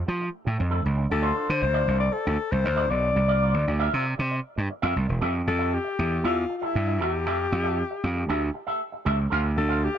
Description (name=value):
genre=disco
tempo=117 BPM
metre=4/4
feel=straight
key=unclear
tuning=A4 = 442 Hz
part: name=gritty slap bass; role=bass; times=0.0-9.9 s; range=E1 to F3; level=-24 LUFS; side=right 1 dB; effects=overdrive
part: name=electric guitar with an envelope filter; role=accompaniment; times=0.1-10.0 s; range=A3 to F5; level=-31 LUFS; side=right 1 dB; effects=lush chorus
part: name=mellow alto saxophone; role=melody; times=1.1-10.0 s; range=E4 to D5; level=-27 LUFS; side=left 5 dB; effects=none
room=light reverb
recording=dark, warm production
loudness=-23 LUFS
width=side -9 dB against mid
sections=0.0-5.2 A section; 5.2-10.0 B section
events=none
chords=0.0 Fmaj9; 1.1 Dm7; 3.2 C9sus4; 5.2 Fmaj9; 9.3 Dm7